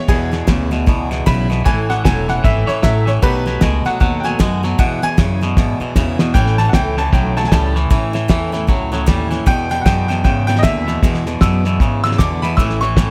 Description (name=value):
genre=rockabilly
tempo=154 BPM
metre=4/4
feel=swing 61% on 8ths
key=E major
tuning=A4 = 439 Hz
part: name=bright upright piano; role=melody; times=0.0-13.1 s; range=G4 to E6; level=-23 LUFS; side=equal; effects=none
part: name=picked steel-string acoustic guitar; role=accompaniment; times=0.0-13.1 s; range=E2 to F#4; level=-27 LUFS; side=equal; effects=none
part: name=twangy electric guitar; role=riff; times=0.1-13.1 s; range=E2 to G#3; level=-24 LUFS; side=equal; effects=none
part: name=upright bass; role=bass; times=0.1-13.1 s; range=E1 to G#2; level=-22 LUFS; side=equal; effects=none
part: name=cloth-damped thuddy drum kit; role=drums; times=0.1-13.1 s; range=hi-hat, kick drum, snare drum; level=-18 LUFS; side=equal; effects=none
room=small room ambience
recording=none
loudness=-16 LUFS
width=mono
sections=0.0-6.4 A section; 6.4-13.1 B section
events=drum fill 5.6-6.4; upright piano solo 6.4-13.1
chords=0.0 E; 1.7 A; 3.2 B7; 4.8 E; 6.4 A; 9.5 E; 12.6 A